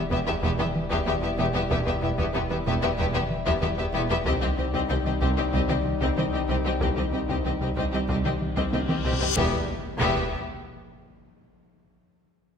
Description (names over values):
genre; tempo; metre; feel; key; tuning
cinematic, hybrid orchestral and electronic film score; 94 BPM; 4/4; straight; E harmonic minor; A4 = 438 Hz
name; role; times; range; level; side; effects
warm French horn section; sustained chords; 0.0-9.6 s; G3 to E4; -32 LUFS; left 6 dB; none
tight sequenced synth; arpeggios; 0.0-9.3 s; C3 to E4; -36 LUFS; equal; none
round analog bass; riff; 0.0-9.3 s; C2 to E3; -34 LUFS; right 2 dB; none
pure sine sub bass; bass; 0.0-10.4 s; E1 to C2; -34 LUFS; equal; none
warm symphonic violin section; melody; 0.1-10.4 s; Eb5 to E5; -34 LUFS; left 5 dB; none
warm symphonic violin section; second line; 0.1-10.4 s; G4; -32 LUFS; left 5 dB; none
rich symphonic viola section; accompaniment; 0.1-10.4 s; B3 to C4; -32 LUFS; equal; none
warm symphonic cello section; bass; 0.1-10.4 s; C2 to E2; -33 LUFS; right 3 dB; none
warm symphonic double bass section; bass; 0.1-10.4 s; E1 to C2; -33 LUFS; right 4 dB; none
taiko ensemble; drums; 0.1-11.2 s; none; -32 LUFS; equal; none
reverse cymbal and impact; sound effects; 8.9-11.9 s; none; -32 LUFS; left 4 dB; none
room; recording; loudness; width
wet scoring stage reverb, RT60 1.5 s; none; -23 LUFS; side -7 dB against mid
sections
0.0-9.4 A section; 9.4-11.9 B section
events
drum fill 8.7-9.4; reverse cymbal 8.9-9.4; impact 9.4-11.9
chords
0.0 Em; 4.3 Cm; 9.4 Em